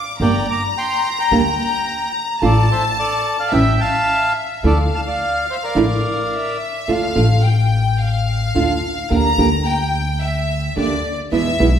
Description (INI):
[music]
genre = tango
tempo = 108 BPM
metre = 4/4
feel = rubato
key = D minor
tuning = A4 = 440 Hz
[part]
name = clear studio violin section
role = second line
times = 0.0-11.8 s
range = D5 to D6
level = -22 LUFS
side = left 2 dB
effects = none
[part]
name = bandoneon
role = melody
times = 0.2-6.6 s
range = A4 to D6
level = -21 LUFS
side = equal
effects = none
[part]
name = nylon-string guitar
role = accompaniment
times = 0.2-11.7 s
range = B2 to G4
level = -20 LUFS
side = right 3 dB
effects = none
[part]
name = upright bass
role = bass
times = 0.2-11.8 s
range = G1 to E2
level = -19 LUFS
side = left 1 dB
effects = none
[sound]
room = wet recital hall reverb, RT60 1.5 s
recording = recorded in a church or concert hall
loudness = -15 LUFS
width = side -9 dB against mid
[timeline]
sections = 0.0-6.9 A section; 6.9-11.8 B section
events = violin section solo 6.9-11.8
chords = 0.2 Gm; 2.4 Dm/A; 3.5 A7; 4.6 Dmadd9; 6.9 Dm; 9.1 Gm/D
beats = | 0.20 0.76 1.31 1.87 | 2.42 2.98 3.53 4.08 | 4.64 5.20 5.75 6.32 | 6.88 7.44 8.00 8.56 | 9.11 9.66 10.22 10.77 | 11.32